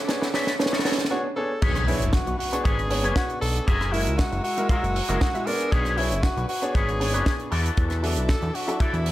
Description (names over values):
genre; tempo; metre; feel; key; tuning
nu-disco, nu disco; 117 BPM; 4/4; straight; B dorian; A4 = 438 Hz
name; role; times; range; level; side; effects
clear studio string section; sustained chords; 0.0-9.1 s; D4 to E6; -39 LUFS; left 1 dB; sidechain pumping
fat analog bass; bass; 0.0-9.1 s; F#1 to E2; -26 LUFS; equal; high-pass filter
clear baby grand piano; accompaniment; 0.1-9.0 s; F#3 to C#6; -29 LUFS; equal; sidechain pumping
tight funk drum kit; drums; 0.1-9.1 s; crash cymbal, hi-hat, rim click, snare drum; -30 LUFS; right 2 dB; none
electric guitar with an envelope filter; riff; 0.3-9.1 s; D4 to E5; -31 LUFS; left 3 dB; ensemble chorus
warm tenor saxophone; melody; 1.1-9.1 s; E4 to A#4; -29 LUFS; equal; tape echo
kick drum; drums; 1.6-8.9 s; none; -24 LUFS; equal; none
impact; sound effects; 1.6-3.7 s; none; -31 LUFS; equal; none
room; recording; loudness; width
light reverb, studio reverb; none; -21 LUFS; side -15 dB against mid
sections
0.0-1.6 A section; 1.6-9.1 B section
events
build-up 0.0-1.6; drum fill 0.0-1.1; filter sweep on clean electric guitar 0.0-1.6; break 1.1-1.6; drop 1.6-9.1; impact 1.6-3.7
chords
0.0 E9sus4; 1.6 Bm69; 3.7 F#9; 5.7 Bm69; 7.5 E9sus4